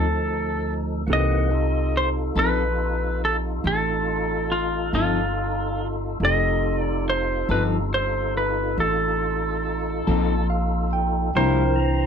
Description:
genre	slow blues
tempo	47 BPM (dotted quarters)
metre	12/8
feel	straight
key	F mixolydian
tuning	A4 = 441 Hz
part	clean lap steel guitar	melody	0.0-12.1 s	F4 to Eb5	-25 LUFS	equal	none
part	barky tine electric piano	accompaniment	0.0-12.1 s	C4 to Bb5	-30 LUFS	right 1 dB	none
part	clean electric guitar	accompaniment	0.0-11.6 s	C3 to A4	-25 LUFS	left 5 dB	harmonic tremolo
part	tonewheel organ	sustained chords	0.0-12.1 s	E3 to Bb5	-29 LUFS	left 1 dB	slow rotary speaker, chorus vibrato
part	upright bass	bass	0.0-12.1 s	F1 to D2	-25 LUFS	equal	none
room	moderate studio reverb, RT60 0.5 s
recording	band playing live in one room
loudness	-20 LUFS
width	side -7 dB against mid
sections	0.0-12.1 A section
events	tine electric piano fill 10.1-11.4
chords	0.0 F7; 11.4 C7

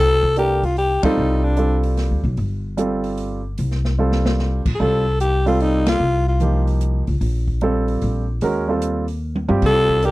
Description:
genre	modal jazz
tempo	149 BPM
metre	3/4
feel	swing 66% on 8ths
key	unclear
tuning	A4 = 439 Hz
part	growling alto saxophone	melody	0.0-1.8, 4.8-6.7, 9.7-10.1 s	D4 to A4	-19 LUFS	left 1 dB	none
part	warm grand piano	accompaniment	0.0-10.1 s	F3 to Bb4	-21 LUFS	right 3 dB	none
part	upright bass	bass	0.0-10.1 s	G1 to G2	-20 LUFS	equal	none
part	open jazz drum kit	drums	0.2-10.1 s	crash cymbal, hi-hat, kick drum, ride cymbal, snare drum, toms	-26 LUFS	equal	none
room	little or no reverb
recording	dry, close 1970s-style studio recording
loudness	-17 LUFS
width	side -18 dB against mid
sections	0.0-10.1 A section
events	band accent 1.0, 5.8; drum fill 4.0-4.4, 9.2-9.6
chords	0.0 C5; 4.8 Ebsus2/C

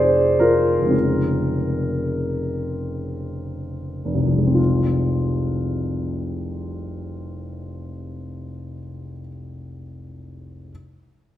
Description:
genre	classical, impressionist solo piano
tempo	41-62 BPM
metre	3/4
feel	rubato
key	F minor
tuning	A4 = 440 Hz
part	clear baby grand piano	solo	0.0-10.7 s	F1 to D5	-21 LUFS	equal	none
room	wet recital hall reverb, RT60 1.5 s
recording	none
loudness	-19 LUFS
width	side -12 dB against mid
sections	0.0-4.6 A section; 4.6-8.4 B section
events	slowing down 0.0-4.6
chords	0.0 Fm6; 0.9 Bbm9/F; 4.6 Fm

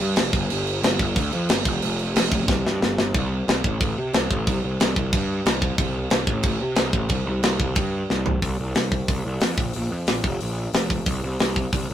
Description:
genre	punk rock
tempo	182 BPM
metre	4/4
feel	straight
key	unclear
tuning	A4 = 436 Hz
part	fuzz picked electric bass	bass	0.0-11.9 s	F1 to C3	-25 LUFS	equal	overdrive
part	tight metal drum kit	drums	0.2-11.8 s	crash cymbal, hi-hat, kick drum, snare drum, toms	-22 LUFS	equal	none
room	light reverb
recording	rough rehearsal-room recording, warm saturation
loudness	-20 LUFS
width	side -11 dB against mid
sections	0.0-3.1 A section; 3.1-8.4 B section; 8.4-11.9 C section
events	drum fill 2.5-3.1, 8.1-8.4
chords	none

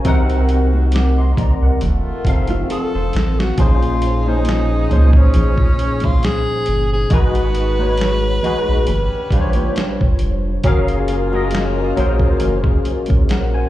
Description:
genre	R&B, neo-soul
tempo	68 BPM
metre	4/4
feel	swing 54% on 16ths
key	Bb minor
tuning	A4 = 440 Hz
part	barky tine electric piano	accompaniment	0.0-13.7 s	Bb2 to D6	-20 LUFS	left 2 dB	overdrive, ensemble chorus, slapback echo
part	warm horn section	stabs	0.0-13.7 s	C3 to Ab4	-30 LUFS	equal	slapback echo
part	boom bap sampler-style drum kit	drums	0.0-13.5 s	hi-hat, kick drum, snare drum	-18 LUFS	equal	none
part	round analog bass	bass	0.1-13.7 s	F1 to Db2	-17 LUFS	equal	none
part	congas	percussion	0.1-13.5 s	none	-29 LUFS	right 2 dB	none
part	hollow-body jazz guitar	second line	2.5-3.6 s	F4 to C5	-28 LUFS	right 4 dB	slapback echo
part	breathy tenor saxophone	melody	2.7-10.2 s	Db4 to Cb5	-22 LUFS	equal	slapback echo
room	small room ambience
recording	live gig heard through the venue's PA, club reverb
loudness	-14 LUFS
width	side -14 dB against mid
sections	0.0-3.6 A section; 3.6-13.7 A section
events	drum fill 2.7-3.6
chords	0.1 Cm7b5; 1.8 F7; 3.6 Bbm11; 7.1 Abm9; 8.9 G7#11; 10.6 Gbmaj9

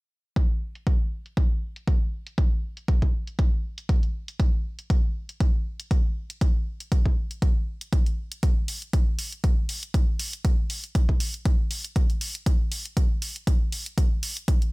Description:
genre	acid house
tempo	119 BPM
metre	4/4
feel	swing 55% on 16ths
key	none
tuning	none
part	electronic hi-hat	drums	0.4-14.7 s	none	-33 LUFS	equal	low-pass filter on hats, small room reverb
part	electronic kick drum	drums	0.4-14.6 s	none	-22 LUFS	equal	small room reverb
room	digital ambience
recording	none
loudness	-23 LUFS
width	side -24 dB against mid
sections	0.4-14.7 A section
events	none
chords	none

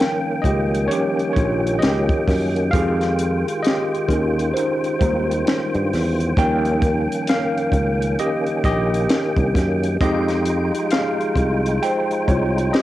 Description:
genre	R&B, neo-soul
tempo	66 BPM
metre	4/4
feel	swing 61% on 16ths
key	F minor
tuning	A4 = 440 Hz
part	tine electric piano	accompaniment	0.0-12.8 s	F3 to G5	-22 LUFS	equal	overdrive, fast stereo tremolo, cassette tape
part	percussive tonewheel organ	sustained chords	0.0-12.8 s	Eb3 to G5	-24 LUFS	equal	slow rotary speaker, overdrive, chorus vibrato, cassette tape
part	compact cocktail drum kit	drums	0.0-12.8 s	hi-hat, kick drum, snare drum	-22 LUFS	equal	cassette tape
part	sustaining fretless electric bass	bass	0.5-12.7 s	Bb1 to G2	-21 LUFS	equal	none
room	light reverb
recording	home recording on cassette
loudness	-17 LUFS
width	side -14 dB against mid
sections	0.0-12.8 A section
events	tine electric piano solo 0.0-12.8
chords	0.0 Eb7; 2.7 Fm9; 6.4 Eb7; 10.0 Fm9

